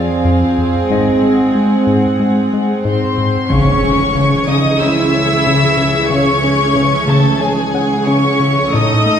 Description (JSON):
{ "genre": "cinematic", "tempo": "92 BPM", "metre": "4/4", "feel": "straight", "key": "C# harmonic minor from 3.5 s", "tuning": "A4 = 441 Hz", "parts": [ { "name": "warm studio violin section", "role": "melody", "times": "0.0-9.2 s", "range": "F5 to E6", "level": "-19 LUFS", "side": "left 2 dB", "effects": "none" }, { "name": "clear studio violin section", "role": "second line", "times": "0.0-9.2 s", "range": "Ab4 to E5", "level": "-21 LUFS", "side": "left 1 dB", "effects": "none" }, { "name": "rich studio viola section", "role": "accompaniment", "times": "0.0-9.2 s", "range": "E3 to A4", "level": "-18 LUFS", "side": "right 1 dB", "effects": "none" }, { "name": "glass harmonica", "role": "sustained chords", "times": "0.0-9.2 s", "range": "C#4 to A5", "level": "-24 LUFS", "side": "right 1 dB", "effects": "none" }, { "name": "fat analog bass", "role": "riff", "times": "0.0-9.2 s", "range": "F2 to C#4", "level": "-16 LUFS", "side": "left 2 dB", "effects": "none" }, { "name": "warm studio cello section", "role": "bass", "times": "0.0-9.2 s", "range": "F2 to E4", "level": "-21 LUFS", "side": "right 2 dB", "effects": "none" }, { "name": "Celtic harp", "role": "texture", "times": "0.0-9.2 s", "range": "D#4 to G5", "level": "-29 LUFS", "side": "left 4 dB", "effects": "none" }, { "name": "warm studio double bass section", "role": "bass", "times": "0.9-9.2 s", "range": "G#1 to C#2", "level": "-23 LUFS", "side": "right 3 dB", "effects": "none" }, { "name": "impact", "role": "sound effects", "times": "3.5-6.1 s", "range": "none", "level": "-24 LUFS", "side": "right 1 dB", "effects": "none" }, { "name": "clear studio violin section", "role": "texture", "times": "3.5-8.4 s", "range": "C#6 to G#6", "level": "-27 LUFS", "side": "left 4 dB", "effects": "none" } ], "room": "wet recital hall reverb, RT60 1.4 s", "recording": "heard from further back in the room", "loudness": "-11 LUFS", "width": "side -8 dB against mid", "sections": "0.0-3.5 A section; 3.5-9.2 B section", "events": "impact 3.5-6.1", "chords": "0.0 Fm; 0.9 G#7; 3.5 C#m", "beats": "0.24 | 0.89 1.54 2.20 2.85 | 3.50 4.15 4.81 5.46 | 6.11 6.76 7.42 8.07 | 8.72" }